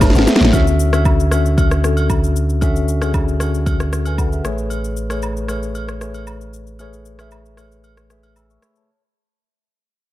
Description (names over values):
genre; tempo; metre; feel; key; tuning
amapiano; 115 BPM; 4/4; straight; A major; A4 = 441 Hz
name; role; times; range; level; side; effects
mellow tine electric piano; accompaniment; 0.0-9.0 s; D3 to E6; -20 LUFS; left 2 dB; medium stereo tremolo
deep log drum bass; bass; 0.0-0.5 s; F#1 to A1; -14 LUFS; equal; none
afro-pop drum kit; drums; 0.0-8.9 s; kick drum, rim click, shaker, snare drum; -18 LUFS; equal; none
woodblock and agogo bells; percussion; 0.0-8.5 s; none; -30 LUFS; right 5 dB; none
warm sub bass; bass; 0.5-8.6 s; A1 to D2; -20 LUFS; equal; none
room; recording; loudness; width
digital ambience; dark, warm production; -14 LUFS; side -15 dB against mid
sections
0.5-8.9 A section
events
drum fill 0.0-0.5; fade-out 0.5-8.9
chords
0.0 Amaj9; 0.5 Dmaj9; 4.4 Amaj9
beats
0.01 | 0.53 1.05 1.58 2.10 | 2.62 3.14 3.66 4.19 | 4.71 5.23 5.75 6.27 | 6.79 7.32 7.84 8.36